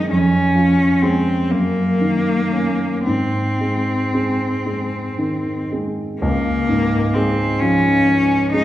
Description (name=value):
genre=classical, romantic duo for cello and grand piano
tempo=37-46 BPM (dotted quarters)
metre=6/8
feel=rubato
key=Db major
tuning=A4 = 439 Hz
part: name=rich cello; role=melody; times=0.0-8.6 s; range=Bb3 to Eb4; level=-19 LUFS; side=left 1 dB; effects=none
part: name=warm grand piano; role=accompaniment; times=0.0-8.6 s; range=Db2 to Db4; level=-19 LUFS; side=right 1 dB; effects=none
room=wet recital hall reverb, RT60 1.4 s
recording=heard from further back in the room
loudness=-16 LUFS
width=side -14 dB against mid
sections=0.0-6.2 A section; 6.2-8.6 B section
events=none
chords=0.1 Db/F; 1.5 Ebm7/Gb; 3.1 Ab; 6.2 Db